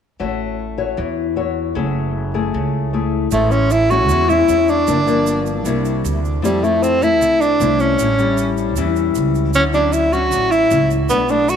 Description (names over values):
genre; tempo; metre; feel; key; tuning
bossa nova; 154 BPM; 4/4; straight; A major; A4 = 440 Hz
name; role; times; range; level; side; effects
nylon-string guitar; accompaniment; 0.2-11.6 s; G2 to C#5; -20 LUFS; left 8 dB; none
upright bass; bass; 0.2-11.6 s; F#1 to F2; -22 LUFS; right 2 dB; none
warm tenor saxophone; melody; 3.3-11.6 s; G3 to F#4; -16 LUFS; right 2 dB; tape echo
egg shaker; percussion; 3.3-11.6 s; none; -33 LUFS; right 16 dB; none
room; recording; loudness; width
moderate echo chamber reverb, RT60 2.4 s; 1960s-style stereo with parts hard left and right; -14 LUFS; side -8 dB against mid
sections
0.2-3.3 A section; 3.3-11.6 B section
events
none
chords
0.2 A6; 1.8 F#m9; 3.3 Amaj7; 4.9 Gm7; 5.7 C7; 6.4 Fmaj7; 8.0 A7; 9.5 Dmaj9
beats
| 0.19 0.58 0.97 1.37 | 1.76 2.15 2.54 2.93 | 3.32 3.71 4.10 4.49 | 4.88 5.26 5.65 6.04 | 6.43 6.82 7.21 7.60 | 7.99 8.38 8.77 9.16 | 9.54 9.93 10.32 10.71 | 11.10 11.49